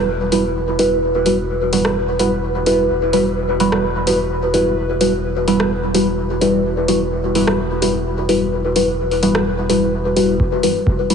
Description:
dub techno; 128 BPM; 4/4; straight; E minor; A4 = 440 Hz
deep mellow chord stab; stabs; 0.0-11.1 s; G3 to B4; -16 LUFS; equal; chorus, phaser, dub echo
warm sub bass; bass; 0.0-10.4 s; E1; -25 LUFS; equal; sidechain pumping
deep house drum kit; drums; 0.3-11.1 s; hi-hat, rim click; -25 LUFS; equal; overdrive, dub echo
electronic kick drum; drums; 10.4-11.0 s; -18 LUFS; equal
wet lush hall reverb, RT60 2.2 s; heavily compressed radio sound, nothing above 10.6 kHz; -15 LUFS; side -6 dB against mid
0.0-10.4 A section
0.0 Emadd9

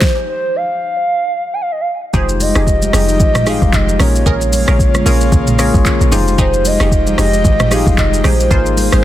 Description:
amapiano; 113 BPM; 4/4; swing 58% on 16ths; F minor; A4 = 440 Hz
hollow clarinet-like synth lead; melody; 0.0-9.0 s; C5 to Ab5; -18 LUFS; right 1 dB; chorus, digital delay
tine electric piano; accompaniment; 0.0-9.0 s; G3 to Eb5; -19 LUFS; left 6 dB
smooth R&B drum kit; drums; 0.0-9.0 s; handclaps, hi-hat, kick drum, rim click, shaker, snare drum, toms; -15 LUFS; equal
airy breathy pad; sustained chords; 2.1-9.0 s; Db3 to G4; -23 LUFS; right 1 dB; chorus, sidechain pumping
punchy chord stab; stabs; 2.1-9.0 s; Db4 to C5; -24 LUFS; right 2 dB; chorus, digital delay
deep log drum bass; bass; 2.1-9.0 s; F1 to Bb1; -15 LUFS; equal
congas; percussion; 2.1-9.0 s; -24 LUFS; right 3 dB
digital ambience; dense, heavily limited modern master; -11 LUFS; side -13 dB against mid
0.0-2.1 A section; 2.1-9.0 B section
stop 0.0-2.1; drop 2.1-9.0
0.0 N.C.; 2.1 Fm9; 4.0 Bbm7; 6.1 Fm9; 8.5 Ab6

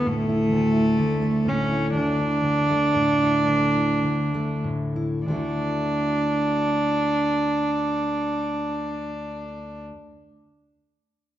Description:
acoustic folk-pop ballad; 32-44 BPM (dotted quarters); 6/8; straight; D major; A4 = 441 Hz
rich cello; melody; 0.0-9.8 s; A3 to D4; -22 LUFS; right 1 dB
fingerpicked steel-string acoustic guitar; accompaniment; 0.0-10.0 s; D2 to F#4; -26 LUFS; left 1 dB
wet recital hall reverb, RT60 1.6 s; recorded in a church or concert hall, nothing above 7.8 kHz; -20 LUFS; side -12 dB against mid
0.0-5.3 A section; 5.3-9.0 B section
slowing down 0.0-5.3
0.0 Dsus2; 5.3 Dadd9

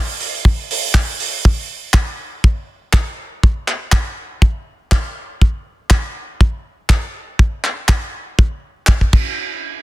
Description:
nu-disco; 121 BPM; 4/4; straight
damped 70s drum kit; drums; 0.2-9.2 s; crash cymbal, handclaps, hi-hat; -21 LUFS; right 1 dB
kick drum; drums; 0.5-9.2 s; -12 LUFS; equal; soft clipping on snare
little or no reverb; dense, heavily limited modern master; -15 LUFS; side -17 dB against mid
0.0-9.4 A section

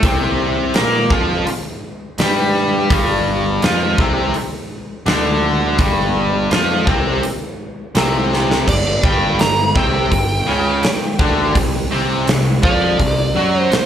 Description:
blues rock power trio and southern rock; 83 BPM; 4/4; straight; A4 = 442 Hz
distorted electric guitar; riff; 0.0-13.7 s; G2 to Bb4; -17 LUFS; left 1 dB; overdrive
fuzz picked electric bass; bass; 0.0-13.7 s; G1 to Bb2; -21 LUFS; equal; overdrive
huge arena drum kit; drums; 0.0-13.9 s; crash cymbal, hi-hat, kick drum, snare drum; -19 LUFS; equal
smooth overdriven lead guitar; second line; 8.7-13.9 s; D5 to Bb5; -20 LUFS; right 2 dB; slapback echo
little or no reverb; live gig heard through the venue's PA, club reverb; -14 LUFS; side -9 dB against mid
0.0-8.7 A section; 8.7-13.9 B section
drum fill 8.3-8.7; lead electric guitar solo 8.7-13.9
0.0 C5; 2.9 G5; 11.6 C5

